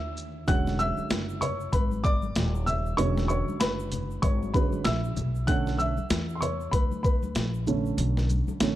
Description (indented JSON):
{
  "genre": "hip hop, jazz-hop",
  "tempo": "96 BPM",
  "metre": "4/4",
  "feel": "swing 60% on 16ths",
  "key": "unclear",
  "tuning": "A4 = 442 Hz",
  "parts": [
    { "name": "dark upright piano", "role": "accompaniment", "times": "0.0-8.8 s", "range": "D3 to F#6", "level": "-29 LUFS", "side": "right 2 dB", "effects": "none" },
    { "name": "upright bass", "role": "bass", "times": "0.0-8.8 s", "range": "D#1 to E2", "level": "-30 LUFS", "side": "equal", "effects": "none" },
    { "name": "boom bap sampler-style drum kit", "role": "drums", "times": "0.2-8.8 s", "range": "hi-hat, kick drum, shaker, snare drum", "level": "-28 LUFS", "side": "equal", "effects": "none" },
    { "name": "tube shaker and congas", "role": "percussion", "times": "0.5-8.8 s", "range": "none", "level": "-39 LUFS", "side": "left 6 dB", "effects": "none" }
  ],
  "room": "light reverb, small room ambience",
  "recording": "dark, warm production",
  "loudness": "-24 LUFS",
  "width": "side -14 dB against mid",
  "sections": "0.5-8.8 A section",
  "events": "upright piano solo 0.5-8.8",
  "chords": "0.5 E13; 5.2 Bm9"
}